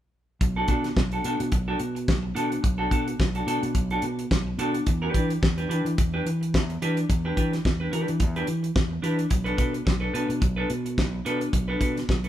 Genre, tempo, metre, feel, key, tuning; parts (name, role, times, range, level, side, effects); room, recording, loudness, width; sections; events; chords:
disco; 108 BPM; 4/4; swing 56% on 16ths; B minor; A4 = 440 Hz
semi-hollow electric guitar; accompaniment; 0.4-12.3 s; D4 to B4; -28 LUFS; equal
fingered electric bass; bass; 0.4-12.3 s; B1 to E3; -28 LUFS; equal
damped 70s drum kit; drums; 0.4-12.3 s; hi-hat, kick drum, snare drum; -25 LUFS; equal
light reverb; band playing live in one room; -23 LUFS; side -12 dB against mid
0.4-12.3 A section
0.4 Bm7; 4.9 Em7; 9.3 Bm7